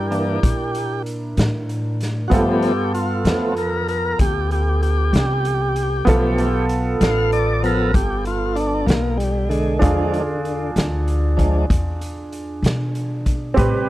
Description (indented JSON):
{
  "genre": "slow blues",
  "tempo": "64 BPM (dotted quarters)",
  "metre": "12/8",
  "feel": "straight",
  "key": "G mixolydian",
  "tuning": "A4 = 444 Hz",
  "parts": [
    { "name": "bright upright piano", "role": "accompaniment", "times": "0.0-13.9 s", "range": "B3 to B4", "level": "-24 LUFS", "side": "right 2 dB", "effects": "none" },
    { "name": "tonewheel organ", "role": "sustained chords", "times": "0.0-13.9 s", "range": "C3 to F5", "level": "-22 LUFS", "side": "equal", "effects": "slow rotary speaker, overdrive" },
    { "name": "upright bass", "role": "bass", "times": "0.0-13.9 s", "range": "G1 to B2", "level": "-22 LUFS", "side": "equal", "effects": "none" },
    { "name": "raw garage drum kit", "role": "drums", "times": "0.1-13.7 s", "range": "hi-hat, kick drum, snare drum", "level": "-22 LUFS", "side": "equal", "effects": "none" }
  ],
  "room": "little or no reverb",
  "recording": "dry, close 1970s-style studio recording",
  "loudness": "-17 LUFS",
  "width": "side -16 dB against mid",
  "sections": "0.0-13.9 A section",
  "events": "tonewheel organ solo 0.0-13.9",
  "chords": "0.0 C7 (rootless); 2.3 G7; 9.8 E7b9"
}